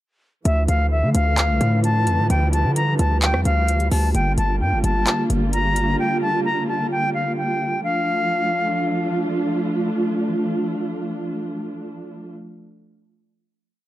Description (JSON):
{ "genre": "hip hop, trap", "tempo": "130 BPM", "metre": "4/4", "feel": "half-time", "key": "D minor", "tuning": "A4 = 438 Hz", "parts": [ { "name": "bright reedy silver concert flute", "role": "melody", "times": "0.5-9.2 s", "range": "E5 to Bb5", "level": "-23 LUFS", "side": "left 1 dB", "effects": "tape echo" }, { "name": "dark symphonic string section", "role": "sustained chords", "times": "0.5-12.3 s", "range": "D3 to F4", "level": "-23 LUFS", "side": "right 1 dB", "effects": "none" }, { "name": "hard-hitting 808-style bass", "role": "bass", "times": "0.5-6.0 s", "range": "G1 to D3", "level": "-19 LUFS", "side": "equal", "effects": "none" }, { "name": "trap drum kit", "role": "drums", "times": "0.5-5.9 s", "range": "handclaps, hi-hat, rim click", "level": "-24 LUFS", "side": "equal", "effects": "none" } ], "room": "small room ambience", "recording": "dark, warm production", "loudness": "-18 LUFS", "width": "side -14 dB against mid", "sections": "0.5-7.8 hook; 7.8-11.5 final chord", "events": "none", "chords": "0.5 Dmadd9; 4.1 Gm7; 7.8 Dm" }